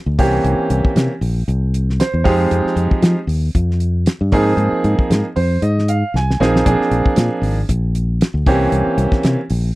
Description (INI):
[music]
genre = electric jazz fusion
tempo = 116 BPM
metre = 4/4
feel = swing 55% on 16ths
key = unclear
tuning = A4 = 440 Hz
[part]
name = fingered electric bass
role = bass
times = 0.1-9.7 s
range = Ab1 to F3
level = -17 LUFS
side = equal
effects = none
[part]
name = bright concert grand piano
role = accompaniment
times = 0.2-9.4 s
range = E3 to Ab5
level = -17 LUFS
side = right 2 dB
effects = none
[part]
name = damped 70s drum kit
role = drums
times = 0.2-9.6 s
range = hi-hat, kick drum, snare drum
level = -17 LUFS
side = equal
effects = none
[sound]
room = little or no reverb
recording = dry, close 1970s-style studio recording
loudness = -14 LUFS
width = side -19 dB against mid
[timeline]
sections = 0.0-9.8 A section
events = grand piano fill 1.7-2.5, 5.1-6.7; drum fill 6.1-6.7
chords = 0.2 C7b9; 2.3 Fm9; 4.3 Ab6; 6.7 Bb9; 8.5 C7b9